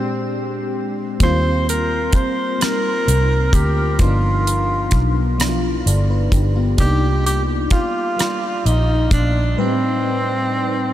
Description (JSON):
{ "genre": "slow six-eight R&B", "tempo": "43 BPM (dotted quarters)", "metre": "6/8", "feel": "straight", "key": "G minor", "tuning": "A4 = 439 Hz", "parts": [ { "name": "breathy tenor saxophone", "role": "melody", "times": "0.0-10.9 s", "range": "C4 to C5", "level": "-22 LUFS", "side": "equal", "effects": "none" }, { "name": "FM electric piano with soft pad layer", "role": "accompaniment", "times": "0.0-10.9 s", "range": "A2 to D5", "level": "-23 LUFS", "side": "left 1 dB", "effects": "chorus, phaser" }, { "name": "vintage muted fingered electric bass", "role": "bass", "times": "1.2-9.5 s", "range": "G1 to Eb2", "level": "-18 LUFS", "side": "equal", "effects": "none" }, { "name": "damped 70s drum kit", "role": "drums", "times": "1.2-9.3 s", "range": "hi-hat, kick drum, rim click", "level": "-19 LUFS", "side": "equal", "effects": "none" } ], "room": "moderate huge ambient reverb, RT60 8.9 s", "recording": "dreamy mix soaked in reverb", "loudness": "-16 LUFS", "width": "side -12 dB against mid", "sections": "0.0-10.9 A section", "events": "break 9.6-10.9", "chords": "0.0 Bb13; 1.2 Eb6; 4.0 G7b13; 6.8 Cm9; 9.6 Am7b5" }